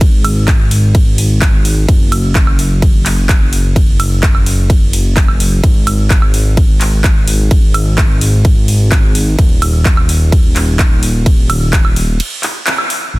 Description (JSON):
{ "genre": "EDM, festival progressive house", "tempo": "128 BPM", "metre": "4/4", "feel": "straight", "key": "unclear", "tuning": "A4 = 440 Hz", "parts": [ { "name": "fat analog bass", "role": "bass", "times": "0.0-13.2 s", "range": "D#1 to G#1", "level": "-13 LUFS", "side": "equal", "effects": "sidechain pumping" }, { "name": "big-room dance drum kit", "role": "drums", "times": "0.0-13.0 s", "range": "handclaps, hi-hat, ride cymbal, woodblock", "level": "-18 LUFS", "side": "right 1 dB", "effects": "none" }, { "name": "electronic kick drum", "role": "drums", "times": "0.0-11.8 s", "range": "none", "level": "-10 LUFS", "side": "equal", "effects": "overdrive" } ], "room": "little or no reverb", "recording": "dense, heavily limited modern master", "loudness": "-9 LUFS", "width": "side -21 dB against mid", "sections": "0.0-13.1 A section", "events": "drop 0.0-13.1; break 12.2-13.1; band accent 12.7", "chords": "none" }